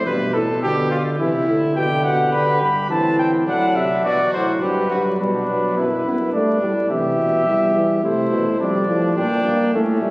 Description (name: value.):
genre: classical, imitative canzona for brass ensemble.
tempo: 105 BPM.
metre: 3/4.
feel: straight.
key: unclear.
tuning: A4 = 440 Hz.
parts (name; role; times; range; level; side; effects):
warm trumpet; second line; 0.0-10.1 s; C4 to B4; -23 LUFS; equal; none.
dark trombone; accompaniment; 0.0-10.1 s; Bb2 to B3; -22 LUFS; equal; none.
mellow bass trombone; bass; 0.0-10.1 s; E2 to E3; -23 LUFS; equal; none.
dark trumpet; melody; 1.8-10.1 s; B4 to B5; -20 LUFS; equal; none.
room: wet cathedral reverb, RT60 5.3 s.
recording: recorded on a phone in the room, club reverb, vinyl crackle.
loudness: -16 LUFS.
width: side -23 dB against mid.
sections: 0.0-5.2 A section; 5.2-10.1 B section.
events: none.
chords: 0.1 G; 1.2 C; 1.8 G/B; 2.9 Am; 3.5 D/A; 4.6 G; 5.2 Bm; 6.3 G5; 6.9 C; 8.0 Am/C; 8.6 Dm/F; 9.2 Gm.